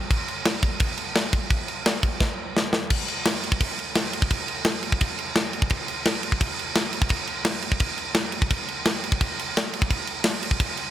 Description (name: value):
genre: punk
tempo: 172 BPM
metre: 4/4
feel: straight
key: none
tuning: none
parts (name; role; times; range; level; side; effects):
- tight metal drum kit; drums; 0.1-10.9 s; crash cymbal, kick drum, snare drum; -22 LUFS; equal; none
room: little or no reverb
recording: none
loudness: -22 LUFS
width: side -12 dB against mid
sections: 0.0-2.9 A section; 2.9-10.9 B section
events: drum fill 2.2-2.9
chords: none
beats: | 0.10 0.45 0.80 1.15 | 1.50 1.86 2.21 2.56 | 2.91 3.26 3.61 3.96 | 4.31 4.66 5.01 5.36 | 5.71 6.06 6.41 6.76 | 7.11 7.46 7.81 8.16 | 8.51 8.86 9.21 9.55 | 9.90 10.25 10.60